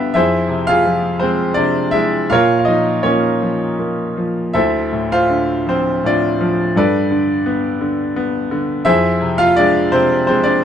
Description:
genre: classical, lyrical solo piano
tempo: 79-86 BPM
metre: 3/4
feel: rubato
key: unclear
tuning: A4 = 440 Hz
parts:
  - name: bright grand piano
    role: solo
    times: 0.0-10.6 s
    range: D2 to B5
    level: -14 LUFS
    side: equal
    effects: none
room: light reverb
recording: dark, warm production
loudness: -14 LUFS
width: side -9 dB against mid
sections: 0.0-10.6 A section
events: none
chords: 0.1 Fm; 2.3 Bbm; 4.5 Dm7; 6.8 Gadd9; 8.9 Fm

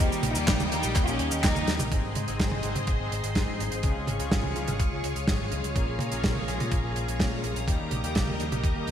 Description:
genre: italo disco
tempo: 125 BPM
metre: 4/4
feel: straight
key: Ab major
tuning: A4 = 439 Hz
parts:
  - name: clear studio violin section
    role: melody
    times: 0.0-1.8 s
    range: G3 to G4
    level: -32 LUFS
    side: equal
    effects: ping-pong delay
  - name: string machine, full ensemble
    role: sustained chords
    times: 0.0-8.9 s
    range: Bb3 to Db6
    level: -34 LUFS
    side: equal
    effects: ensemble chorus
  - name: analog synth brass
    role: stabs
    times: 0.0-8.9 s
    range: Ab2 to Ab4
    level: -34 LUFS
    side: left 3 dB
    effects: chorus, ping-pong delay
  - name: picked electric bass with an envelope filter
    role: bass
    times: 0.0-8.9 s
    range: Ab1 to Bb2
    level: -32 LUFS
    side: equal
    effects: none
  - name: damped 70s drum kit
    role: drums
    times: 0.0-8.9 s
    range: cabasa, handclaps, hi-hat, snare drum, toms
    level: -30 LUFS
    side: right 1 dB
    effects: gated reverb
  - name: electronic kick drum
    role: drums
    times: 0.0-8.7 s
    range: none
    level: -27 LUFS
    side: equal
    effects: none
room: moderate lush hall reverb, RT60 2.3 s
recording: bright 1980s-style digital production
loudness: -25 LUFS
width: side -9 dB against mid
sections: 0.0-1.9 A section; 1.9-8.9 B section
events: drum fill 1.7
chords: 0.0 Eb; 1.9 Ab; 3.8 Db; 5.8 Bbm7; 7.7 Eb

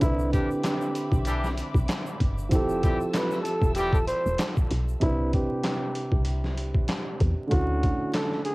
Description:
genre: hip hop, boom-bap hip-hop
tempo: 96 BPM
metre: 4/4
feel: swing 55% on 16ths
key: C major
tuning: A4 = 438 Hz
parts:
  - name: trumpet with bucket mute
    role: melody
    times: 0.0-8.5 s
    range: E4 to C5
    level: -31 LUFS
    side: equal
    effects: high-pass filter, low-pass filter, cassette tape, analog delay
  - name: dark upright piano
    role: accompaniment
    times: 0.0-8.5 s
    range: C3 to B4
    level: -30 LUFS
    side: right 2 dB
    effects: cassette tape, high-pass filter, low-pass filter
  - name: rich studio string section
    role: sustained chords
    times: 0.0-5.0 s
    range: C4 to E6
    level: -40 LUFS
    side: left 1 dB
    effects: high-pass filter, low-pass filter, cassette tape
  - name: woody FM bass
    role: bass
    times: 0.0-7.9 s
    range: E1 to E2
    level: -28 LUFS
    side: equal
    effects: none
  - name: boom bap sampler-style drum kit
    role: drums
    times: 0.0-8.5 s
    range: handclaps, hi-hat, kick drum, snare drum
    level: -26 LUFS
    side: equal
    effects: cassette tape
  - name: egg shaker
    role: percussion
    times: 0.0-5.0 s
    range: none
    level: -52 LUFS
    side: left 4 dB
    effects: none
  - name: clear horn section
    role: stabs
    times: 0.3-4.0 s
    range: E3 to G4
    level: -34 LUFS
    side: left 1 dB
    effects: high-pass filter, low-pass filter, cassette tape, analog delay
room: little or no reverb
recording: home recording on cassette, vinyl crackle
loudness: -23 LUFS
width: side -22 dB against mid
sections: 0.0-5.0 A section; 5.0-8.5 B section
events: none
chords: 0.0 Cmaj9; 2.5 Fmaj9; 5.0 Cmaj9; 7.5 Dmaj9

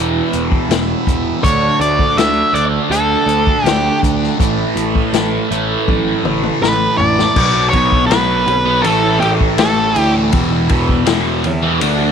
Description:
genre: psychedelic rock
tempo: 81 BPM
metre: 4/4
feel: straight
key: E dorian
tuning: A4 = 440 Hz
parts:
  - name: combo organ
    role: sustained chords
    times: 0.0-12.1 s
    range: E3 to F#5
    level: -26 LUFS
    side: right 13 dB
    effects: none
  - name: thick fuzz guitar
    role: riff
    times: 0.0-12.1 s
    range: E2 to D4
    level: -17 LUFS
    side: right 1 dB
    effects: distortion, phaser
  - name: fuzz picked electric bass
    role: bass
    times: 0.0-12.1 s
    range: E1 to E2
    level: -19 LUFS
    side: right 1 dB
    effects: overdrive
  - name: vintage drum kit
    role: drums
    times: 0.3-12.0 s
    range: crash cymbal, hi-hat, kick drum, ride cymbal, snare drum, toms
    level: -18 LUFS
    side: left 3 dB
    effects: none
  - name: octave-fuzz lead guitar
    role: melody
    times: 1.4-10.1 s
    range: G4 to E5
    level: -16 LUFS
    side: equal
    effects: distortion, tape echo
room: light reverb, small room ambience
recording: 1960s-style stereo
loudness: -12 LUFS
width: side -7 dB against mid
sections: 0.0-7.4 A section; 7.4-12.1 B section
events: drum fill 5.9-7.4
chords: 0.0 Em; 1.4 D; 4.4 Asus2; 7.4 Bm; 8.9 A; 10.3 Em

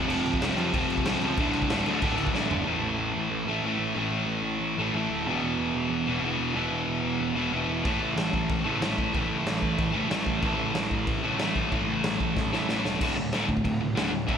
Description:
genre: punk rock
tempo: 186 BPM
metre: 4/4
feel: straight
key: unclear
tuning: A4 = 438 Hz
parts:
  - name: distorted electric guitar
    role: riff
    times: 0.0-14.4 s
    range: D2 to A3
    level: -26 LUFS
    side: equal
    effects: distortion
  - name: fuzz picked electric bass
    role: bass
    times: 0.0-14.4 s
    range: D1 to F2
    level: -33 LUFS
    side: equal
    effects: overdrive
  - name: raw garage drum kit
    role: drums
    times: 0.1-2.6, 7.9-14.4 s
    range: crash cymbal, kick drum, snare drum, toms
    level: -30 LUFS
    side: equal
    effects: none
room: light reverb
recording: none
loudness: -24 LUFS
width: side -8 dB against mid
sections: 0.0-2.7 A section; 2.7-13.0 B section; 13.0-14.4 C section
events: drum fill 2.4-2.7, 12.4-13.0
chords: 0.0 F5; 1.4 D5; 2.7 A5; 5.3 E5; 7.9 A5; 13.0 D5

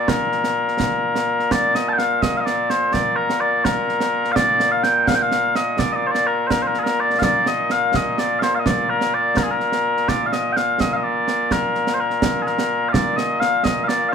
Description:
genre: scottish traditional, Scottish pipe music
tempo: 84 BPM (dotted quarters)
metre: 6/8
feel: straight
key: Bb major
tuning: A4 = 443 Hz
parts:
  - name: mellow small bagpipes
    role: melody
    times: 0.0-14.1 s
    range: Bb2 to A5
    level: -18 LUFS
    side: left 1 dB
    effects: none
  - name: concert snare drum and concert bass drum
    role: drums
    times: 0.1-14.0 s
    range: none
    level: -24 LUFS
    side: right 4 dB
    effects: none
room: moderate studio reverb, RT60 0.7 s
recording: band playing live in one room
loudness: -17 LUFS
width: side -7 dB against mid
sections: 0.0-1.5 A section; 1.5-12.9 B section; 12.9-14.1 B section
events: none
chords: none

